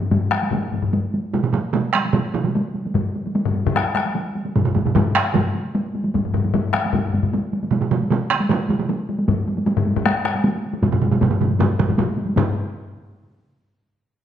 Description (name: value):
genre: japanese traditional, taiko drum ensemble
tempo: 152 BPM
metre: 4/4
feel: straight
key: none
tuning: none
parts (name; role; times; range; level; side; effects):
- taiko ensemble; percussion; 0.0-12.5 s; none; -22 LUFS; equal; none
- taiko ensemble; percussion; 0.1-12.7 s; none; -21 LUFS; left 4 dB; none
- taiko ensemble; percussion; 1.3-12.7 s; none; -21 LUFS; right 6 dB; none
room: wet recital hall reverb, RT60 1.4 s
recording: dark, warm production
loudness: -18 LUFS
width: side -10 dB against mid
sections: 0.0-12.4 A section; 12.4-13.9 B section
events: speeding up 0.0-13.9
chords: none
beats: 0.11 0.52 0.93 | 1.33 1.74 2.14 2.55 | 2.95 3.35 3.75 4.15 | 4.55 4.95 5.35 5.75 | 6.14 6.54 6.93 7.33 | 7.72 8.11 8.50 8.89 | 9.28 9.67 10.06 10.45 | 10.84 11.22 11.61 11.99 | 12.37